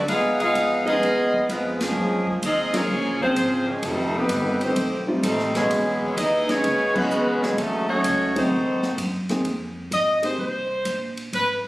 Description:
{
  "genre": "jazz, big band swing",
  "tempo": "128 BPM",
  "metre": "4/4",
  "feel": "swing 67% on 8ths",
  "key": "unclear",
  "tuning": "A4 = 439 Hz",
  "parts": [
    { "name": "upright bass", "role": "bass", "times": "0.0-11.7 s", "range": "F1 to G#2", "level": "-31 LUFS", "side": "equal", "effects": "none" },
    { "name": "bright saxophone section", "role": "melody", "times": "0.1-11.5 s", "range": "E#3 to E#5", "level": "-23 LUFS", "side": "equal", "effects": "none" },
    { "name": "warm trombone section", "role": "second line", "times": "0.1-9.0 s", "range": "B2 to E#4", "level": "-24 LUFS", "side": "right 1 dB", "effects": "none" },
    { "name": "swinging big-band drum kit", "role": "drums", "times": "0.1-11.5 s", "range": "crash cymbal, hi-hat, kick drum, ride cymbal, snare drum", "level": "-33 LUFS", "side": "equal", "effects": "none" },
    { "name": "warm concert grand piano", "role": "accompaniment", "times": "0.9-10.4 s", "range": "E#2 to G#4", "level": "-27 LUFS", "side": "equal", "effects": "none" }
  ],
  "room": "moderate recital hall reverb, RT60 1.3 s",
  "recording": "recorded on a phone in the room, club reverb",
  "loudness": "-20 LUFS",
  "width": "side -18 dB against mid",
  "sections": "0.0-9.5 A section; 9.5-11.7 B section",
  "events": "band accent 1.7, 6.9",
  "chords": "0.1 C#9; 2.0 F#maj9; 3.8 F9; 5.7 E69; 7.6 D#m7b5; 8.5 G#7b9; 9.5 Fmadd11",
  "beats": "| 0.08 0.55 1.02 1.49 | 1.96 2.42 2.89 3.36 | 3.83 4.30 4.77 5.24 | 5.70 6.17 6.64 7.11 | 7.58 8.04 8.51 8.98 | 9.45 9.92 10.39 10.86 | 11.32"
}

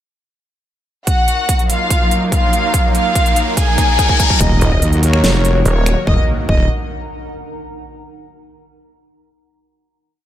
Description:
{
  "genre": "heavy wobble dubstep",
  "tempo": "144 BPM",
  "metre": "4/4",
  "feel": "half-time",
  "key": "Eb minor",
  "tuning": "A4 = 439 Hz",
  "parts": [
    { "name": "warm symphonic violin section", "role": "melody", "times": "1.1-6.6 s", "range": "F4 to Ab5", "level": "-18 LUFS", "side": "left 1 dB", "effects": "ping-pong delay" },
    { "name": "supersaw pad", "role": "sustained chords", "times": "1.1-6.3 s", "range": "Eb3 to Bb4", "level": "-24 LUFS", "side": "right 2 dB", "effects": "sidechain pumping" },
    { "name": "big-room dance drum kit", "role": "drums", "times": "1.1-5.9 s", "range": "finger snaps, hi-hat, snare drum", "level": "-20 LUFS", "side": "right 2 dB", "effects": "none" },
    { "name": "electronic kick drum", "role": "drums", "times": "1.1-6.6 s", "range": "none", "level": "-16 LUFS", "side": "equal", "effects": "none" },
    { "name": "riser, reverse cymbal, sub drop and impact", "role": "sound effects", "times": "2.5-7.7 s", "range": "none", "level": "-23 LUFS", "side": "left 1 dB", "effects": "none" },
    { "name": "warbly tape-like pad", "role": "texture", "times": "1.6-7.7 s", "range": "Gb3 to Bb5", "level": "-26 LUFS", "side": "right 1 dB", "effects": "chorus, built-in reverb, sidechain pumping" },
    { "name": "wobble bass", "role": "bass", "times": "4.4-6.7 s", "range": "Eb1 to Eb2", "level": "-14 LUFS", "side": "equal", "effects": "chorus, overdrive" },
    { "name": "snarling distorted saw bass", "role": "bass", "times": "4.6-6.0 s", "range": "Eb1", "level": "-14 LUFS", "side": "equal", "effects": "overdrive" }
  ],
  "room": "light reverb",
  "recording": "none",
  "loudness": "-12 LUFS",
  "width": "side -11 dB against mid",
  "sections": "1.1-4.4 build; 4.4-6.1 outro; 6.1-7.7 final chord",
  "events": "build-up 1.1-4.4; riser 2.5-4.4; drum fill 2.7-4.4; reverse cymbal 3.6-4.4; impact 4.4-6.1",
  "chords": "1.1 Ebmadd9; 4.4 Ebm",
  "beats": "| 1.07 1.49 1.91 2.32 | 2.74 3.15 3.57 3.99 | 4.41 4.82 5.24 5.66 | 6.07 6.49 6.91 7.32"
}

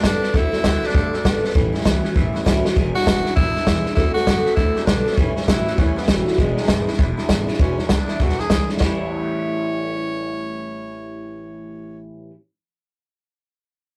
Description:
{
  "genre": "rockabilly",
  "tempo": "198 BPM",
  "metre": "4/4",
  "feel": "swing 62% on 8ths",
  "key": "A mixolydian",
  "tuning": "A4 = 439 Hz",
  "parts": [
    { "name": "clear tenor saxophone", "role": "melody", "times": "0.0-12.0 s", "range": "G#3 to C#5", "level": "-28 LUFS", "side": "equal", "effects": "none" },
    { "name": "picked steel-string acoustic guitar", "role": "accompaniment", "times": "0.0-12.3 s", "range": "E2 to F#4", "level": "-28 LUFS", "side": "equal", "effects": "none" },
    { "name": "electric guitar through a small old amp", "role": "riff", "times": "0.0-12.3 s", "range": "E2 to E4", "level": "-30 LUFS", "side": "equal", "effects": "phaser" },
    { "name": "upright bass", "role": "bass", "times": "0.0-12.1 s", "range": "E1 to G2", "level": "-28 LUFS", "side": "equal", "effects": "none" },
    { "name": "vintage drum kit", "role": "drums", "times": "0.0-8.9 s", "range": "hi-hat, kick drum, snare drum", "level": "-22 LUFS", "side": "equal", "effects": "none" }
  ],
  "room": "moderate booth ambience, RT60 0.2 s",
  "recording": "rough rehearsal-room recording, tube saturation",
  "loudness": "-19 LUFS",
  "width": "mono",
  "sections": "0.0-7.6 A section; 7.6-8.8 B section; 8.8-11.2 C section",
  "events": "drum fill 2.6",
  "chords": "0.0 D7; 1.5 A7; 2.8 E7; 4.0 D7; 5.2 A7; 6.4 E7; 8.8 A7",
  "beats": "0.04 | 0.34 0.64 0.95 1.25 | 1.55 1.85 2.15 2.46 | 2.76 3.06 3.36 3.66 | 3.96 4.27 4.57 4.87 | 5.17 5.48 5.78 6.08 | 6.38 6.69 6.99 7.29 | 7.59 7.90 8.20 8.50 | 8.81 9.11 9.41 9.72 | 10.02 10.32 10.63 10.93"
}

